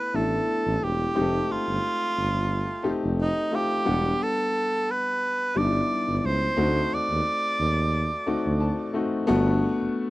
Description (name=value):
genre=lush 1970s-style soul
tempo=89 BPM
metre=4/4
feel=swing 54% on 16ths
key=G major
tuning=A4 = 440 Hz
part: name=breathy tenor saxophone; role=melody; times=0.0-9.0 s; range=Eb4 to D5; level=-26 LUFS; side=right 1 dB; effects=none
part: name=warm baby grand piano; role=accompaniment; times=0.0-10.1 s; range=G3 to A5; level=-27 LUFS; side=left 2 dB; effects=none
part: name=mellow tuba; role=bass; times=0.1-9.9 s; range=E1 to Eb2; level=-26 LUFS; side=right 1 dB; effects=none
room=little or no reverb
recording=dry, close 1970s-style studio recording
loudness=-22 LUFS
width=side -18 dB against mid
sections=0.0-9.3 A section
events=grand piano fill 8.3-9.3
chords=0.0 G69; 1.1 F9; 3.9 Em9; 6.6 D7b9; 9.3 Gmaj7